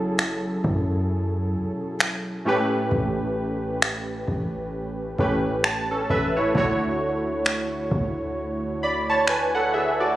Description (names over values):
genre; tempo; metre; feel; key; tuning
contemporary R&B; 66 BPM; 4/4; swing 58% on 16ths; unclear; A4 = 440 Hz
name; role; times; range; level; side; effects
warm analog keys; accompaniment; 0.0-10.2 s; A2 to B5; -23 LUFS; right 1 dB; chorus
warm 808-style bass; bass; 0.0-10.1 s; E1 to F#2; -30 LUFS; equal; none
booming analog drum machine; drums; 0.2-9.5 s; finger snaps, kick drum; -25 LUFS; equal; none
room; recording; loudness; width
light reverb; recorded on a phone in the room, studio reverb, compression; -22 LUFS; side -14 dB against mid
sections
0.0-10.2 A section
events
synth keys fill 5.2-6.5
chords
0.0 F#m7; 2.5 A7; 6.5 Dmaj7